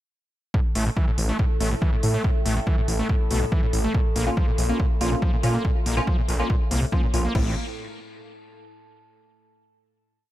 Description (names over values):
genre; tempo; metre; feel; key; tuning
driving peak-time techno; 141 BPM; 4/4; straight; unclear; A4 = 440 Hz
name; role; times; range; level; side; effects
screaming distorted acid line; riff; 0.5-7.5 s; A1 to Bb3; -29 LUFS; equal; distortion, chorus, sidechain pumping, tape echo
overtone-sweeping drone; drone; 1.1-7.4 s; A2 to A4; -33 LUFS; equal; chorus, built-in reverb, sidechain pumping
electronic kick drum; drums; 0.5-7.4 s; none; -23 LUFS; equal; studio reverb
detuned saw bass; bass; 0.8-7.5 s; A1 to Bb2; -24 LUFS; equal; sidechain pumping
techno drum kit; drums; 0.8-7.4 s; crash cymbal, hi-hat; -33 LUFS; left 1 dB; sidechain pumping on hats, studio reverb, sidechain pumping on cymbals
wavetable chord stab; stabs; 4.3-7.5 s; A3 to F4; -29 LUFS; equal; sidechain pumping, tape echo
room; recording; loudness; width
little or no reverb; dark, warm production; -20 LUFS; side -14 dB against mid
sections
0.5-7.3 groove; 7.3-9.1 final chord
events
none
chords
0.5 A5; 3.9 Bbm; 7.3 N.C.